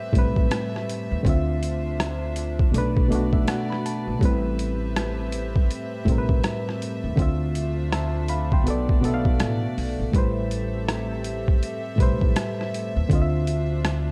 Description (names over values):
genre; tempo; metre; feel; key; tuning
lo-fi hip hop; 81 BPM; 4/4; swing 61% on 16ths; A minor; A4 = 439 Hz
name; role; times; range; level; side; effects
barky reed electric piano; accompaniment; 0.0-14.1 s; A2 to C6; -28 LUFS; equal; overdrive, cassette tape
clear studio string section; sustained chords; 0.0-14.1 s; A3 to E5; -36 LUFS; equal; none
upright bass; bass; 0.1-14.1 s; A1 to D#2; -30 LUFS; equal; none
boom bap sampler-style drum kit; drums; 0.1-14.1 s; hi-hat, kick drum, rim click; -25 LUFS; equal; overdrive
room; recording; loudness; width
light reverb; dark, warm production; -24 LUFS; mono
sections
0.0-14.1 A section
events
none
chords
0.0 Am9; 1.2 Dm9; 2.7 Bm7; 4.2 Am9; 7.2 Dm9; 8.7 Bm7; 10.1 Am9; 13.1 Dm9